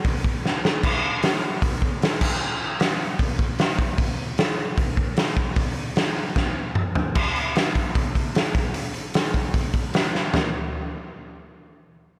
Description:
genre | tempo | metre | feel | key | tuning
punk | 152 BPM | 4/4 | straight | none | none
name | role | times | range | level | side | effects
raw garage drum kit | drums | 0.0-10.4 s | crash cymbal, hi-hat, kick drum, snare drum, toms | -24 LUFS | equal | none
room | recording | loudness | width
little or no reverb | none | -24 LUFS | mono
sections
0.0-7.1 A section; 7.1-10.3 B section; 10.3-11.9 C section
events
drum fill 0.4-0.8, 6.4-7.1, 10.1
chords
none

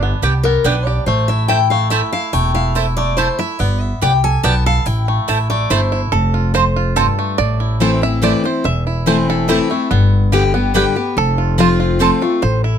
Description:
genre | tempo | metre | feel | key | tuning
bluegrass | 143 BPM | 3/4 | straight | A minor | A4 = 440 Hz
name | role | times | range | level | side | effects
bluegrass banjo | melody | 0.0-12.8 s | A3 to E5 | -20 LUFS | right 4 dB | none
upright bass | bass | 0.0-12.8 s | E1 to C2 | -17 LUFS | equal | none
mandolin | stabs | 0.2-12.1 s | A3 to A5 | -19 LUFS | right 6 dB | none
picked steel-string acoustic guitar | accompaniment | 0.4-12.8 s | E2 to A5 | -18 LUFS | left 4 dB | none
room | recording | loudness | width
little or no reverb | close, detailed microphones | -13 LUFS | side -8 dB against mid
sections
0.0-6.1 A section; 6.1-12.8 A section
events
steel-string acoustic guitar solo 0.0-6.1; five-string banjo solo 6.1-12.8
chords
0.0 G; 1.1 Am; 3.6 G; 4.9 Am; 6.1 F; 7.4 Am; 9.9 G; 11.2 F

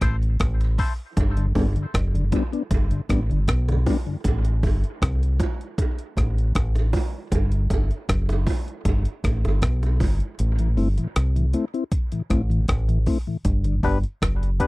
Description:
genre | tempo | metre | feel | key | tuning
dub reggae | 78 BPM | 4/4 | straight | A dorian | A4 = 440 Hz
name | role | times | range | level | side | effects
mellow tonewheel organ | accompaniment | 0.0-4.2, 10.6-13.8 s | G2 to E4 | -24 LUFS | left 3 dB | slow rotary speaker, high-pass filter
percussive organ stab | stabs | 0.0-0.9, 13.8-14.7 s | B3 to C5 | -28 LUFS | left 4 dB | chorus, high-pass filter, dub echo
deep dub fingered electric bass | bass | 0.0-14.6 s | F#1 to C2 | -21 LUFS | equal | none
breakbeat sampler-style drum kit | drums | 0.0-14.7 s | hi-hat, kick drum, rim click | -24 LUFS | equal | none
bongos | percussion | 0.0-10.2 s | none | -33 LUFS | right 4 dB | high-pass filter on perc, dub echo
room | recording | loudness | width
little or no reverb | dry, close 1970s-style studio recording | -20 LUFS | side -21 dB against mid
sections
0.0-14.7 A section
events
filter sweep 0.0-1.2; kick muted 10.4-11.9; part muted 10.4-14.7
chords
0.0 Am; 1.2 G; 4.2 Am; 7.3 G; 10.4 Am; 13.5 G

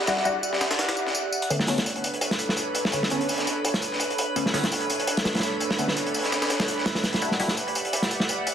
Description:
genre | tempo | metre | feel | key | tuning
drum and bass, jungle | 168 BPM | 4/4 | swing 54% on 16ths | B minor | A4 = 439 Hz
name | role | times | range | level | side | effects
airy breathy pad | sustained chords | 0.0-8.5 s | D4 to F#5 | -30 LUFS | right 1 dB | chorus, vintage 12-bit sampler grit
drifting glass-harmonics texture | texture | 0.0-8.5 s | B4 to F#6 | -33 LUFS | right 4 dB | chorus, built-in reverb
filtered dub chord stab | stabs | 0.1-7.5 s | D3 to F#4 | -30 LUFS | left 2 dB | phaser, wide subtle chorus, dub echo
breakbeat sampler-style drum kit | drums | 0.1-8.5 s | hi-hat, snare drum, tambourine | -29 LUFS | left 1 dB | high-pass filter on perc, high-pass filter on hats, high-pass filter on snare, high-pass filter on room
crunchy breakbeat drum kit | drums | 1.5-8.5 s | hi-hat, snare drum | -26 LUFS | equal | none
room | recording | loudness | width
moderate echo chamber reverb, RT60 1.3 s, digital ambience | dense, heavily limited modern master, vinyl crackle | -23 LUFS | side -8 dB against mid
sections
0.0-8.5 A section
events
filter sweep on analog synth pad 0.0-8.5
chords
0.0 Em9; 1.5 Bm9; 7.2 Em9

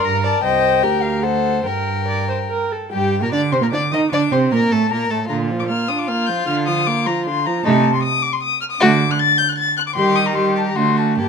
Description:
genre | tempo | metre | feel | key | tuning
quick classical-period movement for string quartet | 152 BPM | 3/4 | rubato | G minor | A4 = 438 Hz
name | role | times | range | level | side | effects
dark violin | melody | 0.0-11.3 s | F5 to A6 | -20 LUFS | left 9 dB | none
rich violin | second line | 0.0-11.3 s | Eb4 to Eb5 | -22 LUFS | left 4 dB | none
warm viola | accompaniment | 0.0-11.3 s | D3 to D5 | -20 LUFS | right 4 dB | none
rich cello | bass | 0.0-11.3 s | C2 to Eb3 | -22 LUFS | right 6 dB | none
room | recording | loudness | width
light reverb | close, detailed microphones | -15 LUFS | side -6 dB against mid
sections
0.0-2.9 A section; 2.9-11.3 B section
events
none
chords
0.4 Cm; 0.8 Gm/D; 1.2 D7; 1.7 Gm; 4.1 Bbmaj9; 5.3 Bb; 6.5 Bb/D; 7.6 Adim/C; 8.8 D; 10.0 Eb6; 10.8 D7

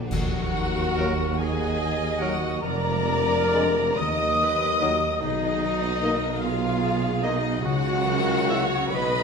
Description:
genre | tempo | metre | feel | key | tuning
classical, slow romantic movement for symphony orchestra | 42-51 BPM (dotted quarters) | 6/8 | rubato | Eb minor | A4 = 440 Hz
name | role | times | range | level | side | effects
dark chamber violin section | melody | 0.0-9.2 s | D5 to Eb6 | -31 LUFS | left 4 dB | none
concert harp | arpeggios | 0.0-9.2 s | Bb2 to Bb5 | -33 LUFS | left 8 dB | none
dark clarinet | second line | 0.1-9.2 s | D#4 to Eb5 | -30 LUFS | left 3 dB | none
dark studio violin section | second line | 0.1-9.2 s | D#4 to Eb5 | -33 LUFS | left 3 dB | none
mellow hollow silver concert flute | second line | 0.1-9.2 s | D#5 to Eb6 | -32 LUFS | left 3 dB | none
rich chamber viola section | accompaniment | 0.1-9.2 s | F#4 to Eb5 | -32 LUFS | right 4 dB | none
mellow trumpet section | stabs | 0.1-9.2 s | D#4 to Eb5 | -31 LUFS | equal | none
clear chamber double bass section | bass | 0.1-9.2 s | F1 to Eb2 | -32 LUFS | right 6 dB | none
warm chamber cello section | bass | 0.1-9.2 s | Eb2 to Db3 | -33 LUFS | right 4 dB | none
warm tuba | bass | 0.1-9.2 s | F1 to Eb2 | -31 LUFS | right 4 dB | none
clash cymbals and concert bass drum | percussion | 0.1-1.8 s | none | -34 LUFS | right 1 dB | none
bright oboe | second line | 1.0-8.6 s | Bb4 to Fb5 | -37 LUFS | right 1 dB | none
mellow bassoon | accompaniment | 1.0-8.6 s | Gb3 to Bb3 | -36 LUFS | right 2 dB | none
mellow French horn section | sustained chords | 1.0-8.7 s | Gb3 to Fb4 | -35 LUFS | left 4 dB | none
room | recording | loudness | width
wet scoring stage reverb, RT60 1.9 s | none | -21 LUFS | side -5 dB against mid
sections
0.1-9.2 A section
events
band accent 0.1-1.0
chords
0.1 Ebm; 2.6 Bb7/F; 4.0 Ebm; 5.2 Bmaj7; 7.6 Gb7/Db

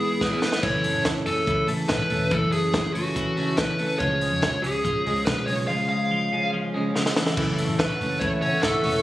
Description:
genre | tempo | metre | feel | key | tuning
jangly indie pop | 142 BPM | 4/4 | straight | F# minor | A4 = 440 Hz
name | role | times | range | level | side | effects
fuzz lead guitar | melody | 0.0-9.0 s | F#4 to E#5 | -25 LUFS | equal | distortion
fingerpicked plugged-in steel-string acoustic guitar | accompaniment | 0.0-9.0 s | F#2 to E4 | -28 LUFS | right 2 dB | none
twelve-string electric guitar | arpeggios | 0.0-9.0 s | E3 to G#4 | -29 LUFS | left 2 dB | none
vintage muted picked electric bass | bass | 0.0-9.0 s | E1 to E#2 | -31 LUFS | equal | none
compact cocktail drum kit | drums | 0.0-8.9 s | crash cymbal, hi-hat, kick drum, ride cymbal, snare drum | -28 LUFS | equal | none
warm analog pad | sustained chords | 7.4-9.0 s | A3 to C#6 | -32 LUFS | equal | chorus
room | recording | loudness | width
light reverb, studio ambience | recorded on a phone in the room, studio reverb, compression | -21 LUFS | side -15 dB against mid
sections
0.6-7.4 A section; 7.4-9.0 B section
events
drum fill 0.2-0.6, 7.0-7.4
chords
0.0 E; 0.6 F#m7; 4.0 C#; 7.2 A/C#; 7.4 F#m7

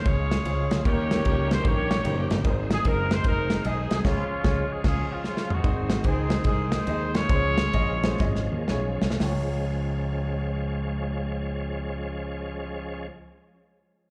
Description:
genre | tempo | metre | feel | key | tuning
uptempo gospel | 112-150 BPM | 4/4 | swing 65% on 8ths | Db major | A4 = 440 Hz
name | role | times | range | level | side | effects
mellow horn section | melody | 0.0-8.7 s | Ab3 to Db5 | -32 LUFS | equal | slapback echo
warm upright piano | accompaniment | 0.0-13.1 s | Db2 to Eb5 | -35 LUFS | equal | slapback echo
bright tonewheel organ | sustained chords | 0.0-13.1 s | Eb3 to G4 | -37 LUFS | equal | fast rotary speaker, overdrive, chorus vibrato
fingered electric bass | bass | 0.1-13.1 s | F1 to Eb2 | -30 LUFS | equal | none
modern studio drum kit | drums | 0.1-9.4 s | crash cymbal, hi-hat, kick drum, ride cymbal, snare drum, toms | -29 LUFS | equal | none
room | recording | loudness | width
little or no reverb | live gig heard through the venue's PA, club reverb | -26 LUFS | mono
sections
0.0-5.6 A section; 5.6-9.2 B section; 9.2-13.5 C section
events
band accent 4.0-5.6; drum fill 5.2-5.6, 8.2-9.2; slowing down 5.6-9.2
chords
0.0 Db; 0.9 Eb7; 2.5 Ab; 4.0 Db; 5.6 Ab; 7.3 Db

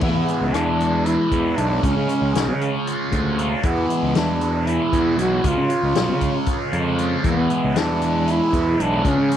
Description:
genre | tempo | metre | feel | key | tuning
psychedelic rock | 233 BPM (eighths) | 7/8 | straight | E mixolydian | A4 = 442 Hz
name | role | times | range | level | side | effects
mellow duduk | melody | 0.0-9.4 s | A3 to F#4 | -22 LUFS | equal | slapback echo
overdriven combo organ | sustained chords | 0.0-9.4 s | G#4 to E#5 | -32 LUFS | right 12 dB | none
thick fuzz guitar | riff | 0.0-9.4 s | C#3 to E#4 | -23 LUFS | equal | distortion, phaser
fuzz picked electric bass | bass | 0.0-9.3 s | B1 to C#3 | -23 LUFS | equal | overdrive
vintage drum kit | drums | 0.0-9.4 s | crash cymbal, hi-hat, kick drum, rim click, snare drum | -25 LUFS | left 2 dB | none
room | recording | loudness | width
light reverb, small room reverb | 1960s-style stereo | -18 LUFS | side -10 dB against mid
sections
0.0-9.4 A section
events
none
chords
0.0 E; 1.8 C#; 3.6 E; 5.4 C#; 7.2 E

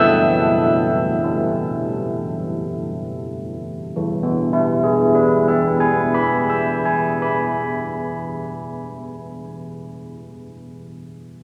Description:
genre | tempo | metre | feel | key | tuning
classical, tune for church bells | 42-48 BPM | 3/4 | straight | E major | A4 = 441 Hz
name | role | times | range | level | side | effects
old church bells | solo | 0.0-9.7 s | E3 to E6 | -20 LUFS | equal | none
room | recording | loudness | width
wet church reverb, RT60 3.7 s | none | -20 LUFS | mono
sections
0.0-4.0 A section; 4.0-8.2 B section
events
slowing down 0.0-4.0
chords
0.0 N.C.; 4.0 E

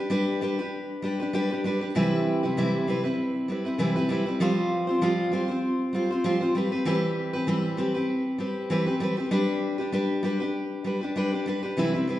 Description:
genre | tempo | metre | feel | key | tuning
pop | 98 BPM | 4/4 | swing 55% on 16ths | C major | A4 = 440 Hz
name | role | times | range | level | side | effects
picked steel-string acoustic guitar | solo | 0.0-12.2 s | C3 to C5 | -24 LUFS | equal | none
room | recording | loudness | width
wet recital hall reverb, RT60 1.6 s | recorded in a church or concert hall, nothing above 10.6 kHz | -24 LUFS | side -14 dB against mid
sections
0.0-11.8 A section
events
none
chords
0.0 G; 2.0 Cmaj7; 4.4 Fsus2; 6.6 Cmaj7/E; 9.3 G

